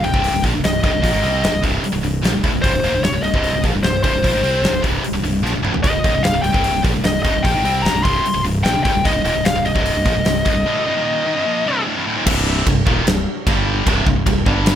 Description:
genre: heavy metal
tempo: 150 BPM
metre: 4/4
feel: straight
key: C minor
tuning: A4 = 441 Hz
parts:
  - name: high-gain lead guitar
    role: melody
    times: 0.0-11.8 s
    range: C5 to C6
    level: -20 LUFS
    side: left 2 dB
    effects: distortion
  - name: heavy high-gain guitar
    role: riff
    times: 0.0-14.8 s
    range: C2 to C4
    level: -20 LUFS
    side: equal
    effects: distortion
  - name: growling fingered electric bass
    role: bass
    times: 0.0-14.8 s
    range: C1 to C2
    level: -23 LUFS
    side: equal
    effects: overdrive
  - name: big rock drum kit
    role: drums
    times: 0.0-14.8 s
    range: crash cymbal, hi-hat, kick drum, snare drum, toms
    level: -20 LUFS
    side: equal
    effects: none
room: little or no reverb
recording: none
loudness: -15 LUFS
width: side -10 dB against mid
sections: 0.0-12.3 A section; 12.3-14.8 B section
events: drum fill 5.4-5.8; half time 12.3-14.8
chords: 0.0 Cm; 13.5 G5; 13.9 C5

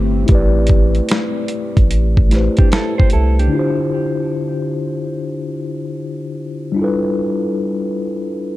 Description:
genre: lo-fi hip hop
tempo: 74 BPM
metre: 4/4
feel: swing 65% on 16ths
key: unclear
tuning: A4 = 440 Hz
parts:
  - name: mellow tine electric piano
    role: accompaniment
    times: 0.0-8.6 s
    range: D3 to D5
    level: -19 LUFS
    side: left 2 dB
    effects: medium stereo tremolo, cassette tape
  - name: dark analog pad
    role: sustained chords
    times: 0.0-3.5 s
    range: A3 to G4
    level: -27 LUFS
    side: left 1 dB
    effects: chorus
  - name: saturated sub bass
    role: bass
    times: 0.0-3.5 s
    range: G1 to C2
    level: -15 LUFS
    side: equal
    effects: none
  - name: dusty soul sampler-style drum kit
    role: drums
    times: 0.3-3.5 s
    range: hi-hat, kick drum, snare drum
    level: -14 LUFS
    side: equal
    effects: none
  - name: mellow electric guitar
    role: second line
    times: 2.6-3.8 s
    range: D4 to C5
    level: -24 LUFS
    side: right 5 dB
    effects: spring reverb, analog delay
room: digital ambience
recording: dark, warm production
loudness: -14 LUFS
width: side -16 dB against mid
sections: 0.0-3.5 A section; 3.5-8.6 B section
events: none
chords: 0.0 Am9; 3.5 Dm11; 6.8 G13

